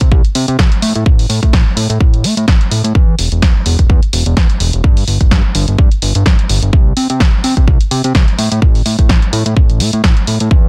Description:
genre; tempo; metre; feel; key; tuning
filtered disco house; 127 BPM; 4/4; swing 55% on 16ths; A minor; A4 = 440 Hz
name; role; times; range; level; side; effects
fat analog bass; bass; 0.0-10.7 s; E1 to C3; -17 LUFS; equal; sidechain pumping
electronic kick drum; drums; 0.0-10.6 s; none; -12 LUFS; equal; none
punchy analog drum machine; drums; 0.0-10.5 s; hi-hat, snare drum; -20 LUFS; equal; sidechain pumping on hats
room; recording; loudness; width
little or no reverb; dense, heavily limited modern master; -12 LUFS; mono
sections
0.0-10.7 A section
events
none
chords
none

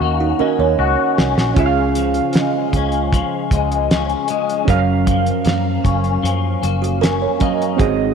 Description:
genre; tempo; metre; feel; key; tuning
indie pop, bedroom pop; 77 BPM; 4/4; straight; unclear; A4 = 440 Hz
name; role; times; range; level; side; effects
clean electric guitar; accompaniment; 0.0-8.1 s; Gb2 to Gb4; -20 LUFS; left 12 dB; ensemble chorus, vibrato effect
warbly lo-fi synth keys; accompaniment; 0.0-8.1 s; Gb3 to F5; -21 LUFS; right 12 dB; chorus, cassette tape
vintage muted picked electric bass; bass; 0.0-8.1 s; Gb1 to Db3; -21 LUFS; right 1 dB; none
kalimba; second line; 0.2-1.5, 6.8-7.8 s; Eb4 to Db5; -22 LUFS; right 12 dB; lush chorus, slapback echo
cloth-damped thuddy drum kit; drums; 1.2-8.0 s; hi-hat, kick drum, snare drum; -19 LUFS; equal; none
room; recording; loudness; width
light reverb, small room ambience; 1960s-style stereo with parts hard left and right; -15 LUFS; side -6 dB against mid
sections
0.0-8.1 A section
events
drum fill 0.0-1.6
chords
0.0 Ebm7; 1.6 Db; 4.7 Gbmaj7

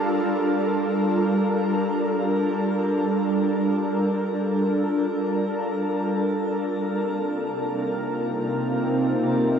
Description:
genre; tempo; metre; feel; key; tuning
ambient; free time; none; none; unclear; A4 = 440 Hz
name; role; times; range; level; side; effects
shimmering ambient pad; sustained chords; 0.0-9.6 s; C3 to D5; -22 LUFS; equal; chorus, built-in reverb, shimmer reverb
bowed-like drone; drone; 7.4-9.6 s; Bb3 to F4; -29 LUFS; left 2 dB; built-in reverb
room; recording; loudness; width
wet huge ambient reverb, RT60 8.4 s; none; -21 LUFS; side -7 dB against mid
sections
0.0-9.6 A section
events
none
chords
0.0 Gm9; 6.7 Cm9

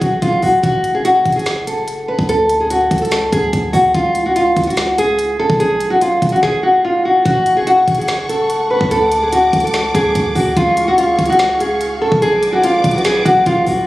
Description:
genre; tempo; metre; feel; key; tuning
hip hop, trap; 145 BPM; 4/4; half-time; F# harmonic minor; A4 = 441 Hz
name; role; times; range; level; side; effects
nylon-string guitar; melody; 0.0-13.8 s; E#4 to B4; -13 LUFS; equal; low-pass filter, digital delay
warm 808-style bass; bass; 0.0-13.9 s; F#1 to D2; -23 LUFS; equal; none
trap drum kit; drums; 0.0-13.8 s; hi-hat, kick drum, snare drum; -22 LUFS; equal; none
dark symphonic string section; sustained chords; 7.3-13.9 s; A3 to D6; -25 LUFS; left 1 dB; none
room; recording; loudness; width
light reverb; recorded on a phone in the room, club reverb; -12 LUFS; side -17 dB against mid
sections
0.0-7.3 A section; 7.3-13.9 B section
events
none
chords
0.0 G#m7/B (rootless); 0.6 F#m; 2.3 Dmaj7#11; 3.9 C#5; 5.6 G#m7/B; 7.3 F#m; 8.9 D; 10.6 C#; 12.2 Bm

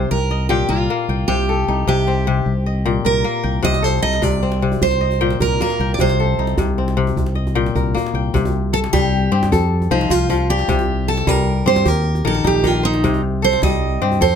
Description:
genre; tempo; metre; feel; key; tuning
west african traditional, West African string and xylophone music; 102 BPM (dotted quarters); 12/8; straight; C dorian; A4 = 440 Hz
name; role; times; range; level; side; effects
picked steel-string acoustic guitar; melody; 0.0-14.4 s; Eb4 to Eb5; -20 LUFS; right 5 dB; none
kora; arpeggios; 0.0-14.4 s; Bb2 to A5; -20 LUFS; left 7 dB; none
fingered electric bass; bass; 0.0-14.4 s; Bb1 to G2; -20 LUFS; equal; none
djembe; percussion; 3.6-14.4 s; none; -24 LUFS; right 2 dB; none
room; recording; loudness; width
little or no reverb; close, detailed microphones; -15 LUFS; side -8 dB against mid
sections
0.0-8.3 A section; 8.3-14.4 B section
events
steel-string acoustic guitar solo 8.3-14.4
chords
0.1 Bb5/C; 9.5 F; 11.9 Eb; 13.0 Cm

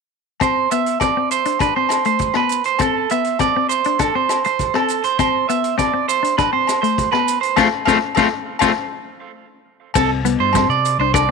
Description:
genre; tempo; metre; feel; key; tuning
highlife guitar band; 101 BPM; 4/4; straight; unclear; A4 = 440 Hz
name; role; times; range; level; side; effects
clean electric guitar; accompaniment; 0.4-11.3 s; A3 to F4; -21 LUFS; left 12 dB; none
electric guitar at the edge of break-up; arpeggios; 0.4-11.3 s; A4 to F5; -18 LUFS; right 11 dB; none
vintage drum kit; drums; 0.4-11.3 s; crash cymbal, hi-hat, kick drum, rim click, snare drum; -25 LUFS; left 5 dB; none
agogo bells; percussion; 0.4-11.3 s; none; -24 LUFS; left 16 dB; none
maracas; percussion; 0.4-11.3 s; none; -29 LUFS; right 16 dB; none
fingered electric bass; bass; 10.0-11.3 s; C2 to C3; -22 LUFS; equal; none
congas; percussion; 10.0-11.2 s; none; -26 LUFS; right 10 dB; none
room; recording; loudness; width
light reverb; 1960s-style stereo with parts hard left and right; -15 LUFS; side -4 dB against mid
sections
0.4-10.0 A section; 10.0-11.3 B section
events
band accent 7.6-10.0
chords
0.4 Amadd11; 7.6 F; 10.0 C5

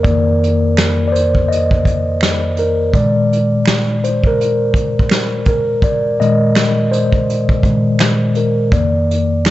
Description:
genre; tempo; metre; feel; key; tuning
lo-fi hip hop; 83 BPM; 4/4; swing 64% on 16ths; unclear; A4 = 440 Hz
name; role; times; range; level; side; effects
mellow tine electric piano; accompaniment; 0.0-9.5 s; F2 to Eb5; -13 LUFS; left 1 dB; slow stereo tremolo
vintage brush drum kit; drums; 0.0-9.5 s; hi-hat, kick drum, snare drum; -16 LUFS; right 1 dB; none
finger snap; percussion; 0.8-9.5 s; none; -28 LUFS; right 8 dB; none
room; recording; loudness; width
moderate spring reverb, RT60 2.0 s, small room ambience; nothing above 8.0 kHz; -12 LUFS; side -15 dB against mid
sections
0.0-9.5 A section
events
tine electric piano solo 0.0-9.5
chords
0.0 F7sus4; 2.9 Bb9sus4; 8.7 F7sus4

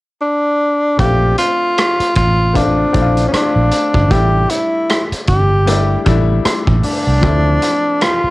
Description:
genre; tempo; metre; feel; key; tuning
lush 1970s-style soul; 77 BPM; 4/4; swing 58% on 16ths; unclear; A4 = 440 Hz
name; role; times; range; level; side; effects
warm tenor saxophone; melody; 0.2-8.3 s; C#4 to G4; -15 LUFS; equal; cassette tape
clear baby grand piano; accompaniment; 1.0-8.3 s; F3 to F4; -21 LUFS; left 5 dB; none
vintage muted fingered electric bass; bass; 1.0-8.3 s; G1 to D2; -14 LUFS; right 1 dB; none
vintage drum kit; drums; 1.0-8.2 s; hi-hat, kick drum, rim click; -18 LUFS; right 1 dB; cassette tape
room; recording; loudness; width
light reverb; home recording on cassette; -12 LUFS; side -20 dB against mid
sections
1.0-8.3 A section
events
none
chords
0.0 N.C.; 1.0 Bbmaj7; 4.1 A7sus4; 7.2 Dm7

